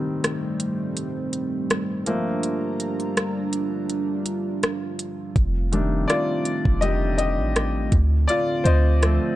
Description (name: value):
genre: contemporary R&B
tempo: 82 BPM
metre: 4/4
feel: swing 54% on 16ths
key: G minor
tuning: A4 = 437 Hz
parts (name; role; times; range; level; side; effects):
- clear grand piano; accompaniment; 0.0-9.4 s; D3 to Eb5; -25 LUFS; left 2 dB; none
- chorused pulse-width pad; sustained chords; 0.0-9.4 s; D3 to Bb5; -28 LUFS; right 2 dB; none
- smooth R&B drum kit; drums; 0.2-9.2 s; hi-hat, kick drum, rim click; -23 LUFS; equal; vintage 12-bit sampler grit
- clean 808-style bass; bass; 5.4-9.2 s; F1 to D2; -21 LUFS; equal; none
room: little or no reverb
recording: dark, warm production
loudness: -21 LUFS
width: side -15 dB against mid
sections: 0.0-9.4 A section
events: break 0.0-5.4; grand piano solo 0.0-9.4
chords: 0.0 Am7b5; 2.1 Gm7; 5.4 F13; 7.9 Dm7